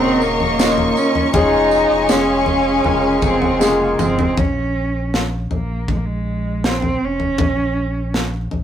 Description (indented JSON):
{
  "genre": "pop ballad",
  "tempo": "80 BPM",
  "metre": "4/4",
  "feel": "straight",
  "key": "unclear",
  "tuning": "A4 = 438 Hz",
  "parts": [
    { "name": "warm cello", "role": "melody", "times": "0.0-8.2 s", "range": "Ab3 to Eb4", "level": "-19 LUFS", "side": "right 2 dB", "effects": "none" },
    { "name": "dark studio violin section", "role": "second line", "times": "0.0-4.3 s", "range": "Ab4 to Db6", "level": "-23 LUFS", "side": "left 3 dB", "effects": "none" },
    { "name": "warm concert grand piano", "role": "accompaniment", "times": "0.0-4.4 s", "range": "Db3 to Ab5", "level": "-18 LUFS", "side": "left 1 dB", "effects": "none" },
    { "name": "warm studio string section", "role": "sustained chords", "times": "0.0-4.3 s", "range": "Ab4 to Db6", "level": "-24 LUFS", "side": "left 2 dB", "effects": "none" },
    { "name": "warm sub bass", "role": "bass", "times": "0.0-8.6 s", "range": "Eb1 to Bb1", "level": "-25 LUFS", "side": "equal", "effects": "none" },
    { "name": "tambourine", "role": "percussion", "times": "0.2-4.2 s", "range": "none", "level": "-32 LUFS", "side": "right 6 dB", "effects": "none" },
    { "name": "modern studio drum kit", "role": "drums", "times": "0.4-8.6 s", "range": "kick drum, snare drum, toms", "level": "-21 LUFS", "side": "left 1 dB", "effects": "none" }
  ],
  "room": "moderate studio reverb, RT60 0.6 s",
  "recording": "rough rehearsal-room recording",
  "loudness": "-15 LUFS",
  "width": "side -10 dB against mid",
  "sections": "0.0-4.4 A section; 4.4-8.6 B section",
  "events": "grand piano fill 2.8-4.4; drum fill 3.6-4.4",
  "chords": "0.0 Ebm7; 1.3 Db/F; 4.4 Bbm; 7.4 Absus4 (rootless)",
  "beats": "0.59 | 1.34 2.09 2.84 3.61 | 4.37 5.13 5.88 6.63 | 7.39 8.14"
}